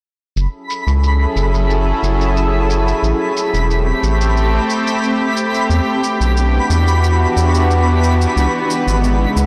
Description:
sunset chillout; 90 BPM; 4/4; straight; F# minor; A4 = 440 Hz
shimmering ambient pad; sustained chords; 0.7-9.5 s; C#3 to A4; -20 LUFS; equal; chorus, built-in reverb
round analog bass; bass; 0.4-9.5 s; E1 to E2; -17 LUFS; equal; tube saturation
shaker; drums; 0.4-9.5 s; -31 LUFS; equal; overdrive, low-pass filter on perc, studio reverb
twinkling granular texture; texture; 0.4-9.5 s; B5; -25 LUFS; equal; built-in reverb
light reverb, digital ambience; blown-out, overdriven recording, overdrive; -16 LUFS; mono
0.4-9.5 A section
filter sweep on analog synth bass 0.4-9.5
0.4 F#m9; 3.0 Am9; 5.7 Em9; 8.4 C#m9
| 0.36 1.03 1.70 2.37 | 3.03 3.70 4.37 5.03 | 5.70 6.37 7.03 7.70 | 8.37 9.03

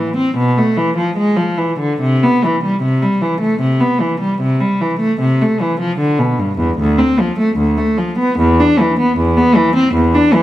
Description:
classical, baroque-style suite movement for unaccompanied cello; 76 BPM; 4/4; rubato; A minor; A4 = 439 Hz
rich cello; solo; 0.0-10.4 s; D2 to D4; -12 LUFS; equal
moderate recital hall reverb, RT60 1.4 s; close, detailed microphones; -12 LUFS; side -14 dB against mid
0.0-10.4 A section
0.36 1.16 | 1.99 2.81 3.60 4.39 | 5.18 5.98 6.77 7.56 | 8.38 9.17 9.95

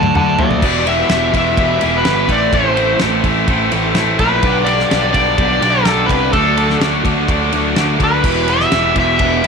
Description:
classic rock; 126 BPM; 4/4; straight; E minor; A4 = 440 Hz
overdriven slide guitar; melody; 0.0-9.5 s; A4 to A5; -16 LUFS; left 1 dB
tonewheel organ; sustained chords; 0.0-9.5 s; A3 to F#5; -28 LUFS; right 1 dB
crunchy overdriven guitar; riff; 0.0-9.5 s; D3 to D5; -18 LUFS; left 13 dB
overdriven electric guitar; riff; 0.0-9.5 s; E2 to D4; -20 LUFS; right 14 dB
fuzz picked electric bass; bass; 0.0-9.4 s; E1 to D#2; -20 LUFS; equal; overdrive
damped 70s drum kit; drums; 0.0-9.5 s; crash cymbal, kick drum, ride cymbal, snare drum, toms; -19 LUFS; equal
light reverb, small room ambience; 1960s-style stereo with parts hard left and right; -12 LUFS; side -5 dB against mid
0.6-9.5 A section
drum fill 0.0-0.6
0.0 D; 0.6 Em; 2.3 Am; 4.4 G/B; 6.3 D; 8.3 Em
0.15 | 0.62 1.10 1.58 2.05 | 2.53 3.01 3.48 3.96 | 4.44 4.91 5.39 5.87 | 6.35 6.82 7.30 7.78 | 8.26 8.73 9.21

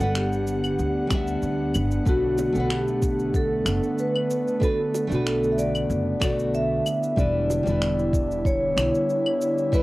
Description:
sunset chillout; 94 BPM; 4/4; straight; E minor; A4 = 439 Hz
vibraphone with medium mallets; melody; 0.0-9.8 s; F#4 to E5; -26 LUFS; equal; cassette tape
nylon-string guitar; accompaniment; 0.0-9.8 s; G3 to F#5; -30 LUFS; equal; auto-pan, cassette tape
airy breathy pad; sustained chords; 0.0-9.8 s; D3 to F#5; -27 LUFS; right 1 dB; chorus, vintage 12-bit sampler grit, cassette tape
upright bass; bass; 0.0-8.9 s; E1 to D2; -28 LUFS; equal
electronic cabasa, finger snaps and claves; drums; 0.0-9.8 s; -32 LUFS; equal; cassette tape
electronic kick drum; drums; 1.1-9.8 s; -24 LUFS; equal; cassette tape
bongos; percussion; 2.4-7.6 s; -34 LUFS; right 5 dB
moderate small room reverb, RT60 0.5 s; home recording on cassette; -21 LUFS; side -19 dB against mid
0.0-9.8 A section
0.0 Gmaj7; 2.1 Bm7; 6.9 Em7
0.15 0.79 1.43 | 2.07 2.70 3.34 3.98 | 4.62 5.26 5.90 6.53 | 7.17 7.81 8.45 9.09 | 9.73

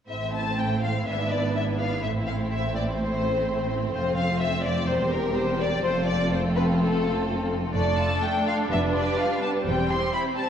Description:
quick classical-period movement for string orchestra; 126 BPM; 4/4; straight; A minor; A4 = 440 Hz
warm symphonic violin section; melody; 0.1-10.5 s; A4 to C6; -28 LUFS; left 3 dB
rich symphonic violin section; second line; 0.1-10.5 s; G3 to C5; -31 LUFS; equal
warm symphonic viola section; accompaniment; 0.1-10.5 s; G3 to D4; -29 LUFS; right 1 dB
rich symphonic double bass section; bass; 0.1-10.0 s; E1 to A1; -30 LUFS; right 2 dB
warm symphonic cello section; bass; 0.1-10.0 s; E2 to A2; -30 LUFS; right 1 dB
wet recital hall reverb, RT60 1.4 s; worn, warbling old tape, cassette tape, warbly pitch drift; -22 LUFS; side -8 dB against mid
0.1-10.5 A section
0.1 Am; 1.1 E7/G#; 2.0 Am; 4.0 F; 4.9 C7/E; 5.9 F; 7.8 Dm/F; 8.7 G7/F; 9.7 C/E
| 0.10 0.59 1.08 1.56 | 2.04 2.52 3.00 3.48 | 3.95 4.43 4.90 5.38 | 5.85 6.33 6.80 7.28 | 7.75 8.23 8.71 9.18 | 9.66 10.13

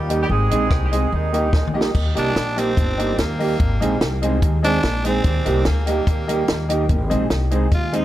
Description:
ska; 146 BPM; 4/4; straight; Eb major; A4 = 438 Hz
dark horn section; melody; 0.0-1.9 s; Eb3 to Ab4; -26 LUFS; right 3 dB; tape echo
upright bass; bass; 0.0-8.0 s; G1 to Eb2; -22 LUFS; equal
mellow electric guitar; accompaniment; 0.1-8.0 s; G3 to Ab4; -24 LUFS; right 4 dB; tape echo
warm upright piano; stabs; 0.1-8.0 s; Eb4 to Eb5; -27 LUFS; left 4 dB; tape echo
compact cocktail drum kit; drums; 0.1-8.0 s; crash cymbal, hi-hat, kick drum, rim click, snare drum, toms; -21 LUFS; equal
breathy tenor saxophone; melody; 2.2-8.0 s; Bb3 to F4; -26 LUFS; right 1 dB; tape echo
small room ambience; -17 LUFS; side -14 dB against mid
0.0-1.9 A section; 1.9-8.0 B section
drum fill 1.5-1.9; tenor saxophone solo 1.9-8.0
0.3 Ab; 1.1 Eb; 3.6 Ab; 5.2 Eb; 6.9 Ab
| 0.29 0.71 1.12 1.53 | 1.95 2.36 2.77 3.18 | 3.60 4.01 4.42 4.83 | 5.25 5.66 6.07 6.48 | 6.89 7.30 7.72

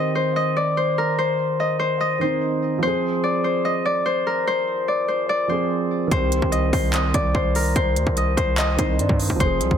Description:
hip hop, trap; 146 BPM; 4/4; half-time; C minor; A4 = 440 Hz
Celtic harp; melody; 0.0-9.8 s; Bb4 to Eb5; -21 LUFS; left 2 dB
dark baby grand piano; accompaniment; 0.0-9.8 s; Eb3 to Ab4; -26 LUFS; right 4 dB
distorted 808-style bass; bass; 6.1-9.8 s; F1 to G2; -22 LUFS; equal; distortion
trap drum kit; drums; 6.1-9.8 s; handclaps, hi-hat, kick drum; -24 LUFS; equal
hollow clarinet-like synth lead; second line; 6.9-9.4 s; C5 to Eb5; -34 LUFS; left 3 dB
light reverb, digital ambience; dense, heavily limited modern master; -19 LUFS; side -8 dB against mid
0.0-9.8 A section
0.0 Cm; 2.8 Fm; 6.1 Cm
0.36 0.77 | 1.18 1.59 2.00 2.42 | 2.83 3.24 3.65 4.06 | 4.47 4.88 5.29 5.70 | 6.11 6.53 6.94 7.35 | 7.76 8.17 8.58 8.99 | 9.40

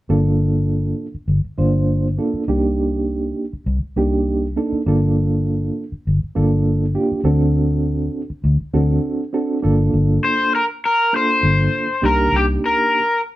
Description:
straight-eighth soul blues; 100 BPM; 4/4; straight; G minor; A4 = 440 Hz
barky reed electric piano; accompaniment; 0.1-13.0 s; Bb3 to C5; -20 LUFS; right 2 dB; overdrive, fast tremolo
vintage muted fingered electric bass; bass; 0.1-12.6 s; G1 to D2; -18 LUFS; left 1 dB
overdriven slide guitar; melody; 10.2-13.2 s; G4 to C5; -16 LUFS; left 2 dB
moderate studio reverb, RT60 0.6 s; band playing live in one room; -16 LUFS; side -16 dB against mid
0.1-9.6 A section; 9.6-13.4 B section
break 9.0-9.6
0.1 Gm7; 2.5 Cm7; 4.9 Gm7; 7.3 D7; 9.6 Gm7; 12.0 Cm7
| 0.10 0.69 1.29 1.89 | 2.48 3.08 3.67 4.27 | 4.87 5.46 6.06 6.66 | 7.25 7.85 8.45 9.04 | 9.64 10.24 10.84 11.43 | 12.03 12.63

